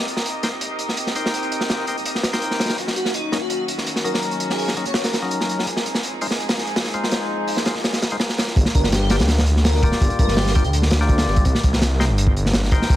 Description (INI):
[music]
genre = drum and bass, jungle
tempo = 166 BPM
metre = 4/4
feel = straight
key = G phrygian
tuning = A4 = 440 Hz
[part]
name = rich chamber string section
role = sustained chords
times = 0.0-8.5 s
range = Eb3 to Eb5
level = -28 LUFS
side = right 1 dB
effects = low-pass filter
[part]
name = crunchy breakbeat drum kit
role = drums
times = 0.1-13.0 s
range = hi-hat, kick drum, snare drum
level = -20 LUFS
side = equal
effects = high-pass filter on kick, high-pass filter on hats, high-pass filter on snare, high-pass filter on room
[part]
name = percussive tonewheel organ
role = stabs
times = 0.4-13.0 s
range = Gb3 to G5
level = -27 LUFS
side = left 3 dB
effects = overdrive, dub echo
[part]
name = airy dreamy lead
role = melody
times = 3.0-5.2, 8.7-10.7 s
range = Eb4 to Db5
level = -29 LUFS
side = left 1 dB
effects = chorus, dub echo
[part]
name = detuned saw bass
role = bass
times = 8.6-13.0 s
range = D1 to D2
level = -19 LUFS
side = equal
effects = tube saturation
[sound]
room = small room ambience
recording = dense, heavily limited modern master, vinyl crackle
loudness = -18 LUFS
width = side -14 dB against mid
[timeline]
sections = 0.0-8.6 A section; 8.6-13.0 B section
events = drop 8.6-13.0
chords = 0.0 Cm7; 2.8 Ebm7; 5.7 Fm7; 8.6 Gm7; 11.5 Cm7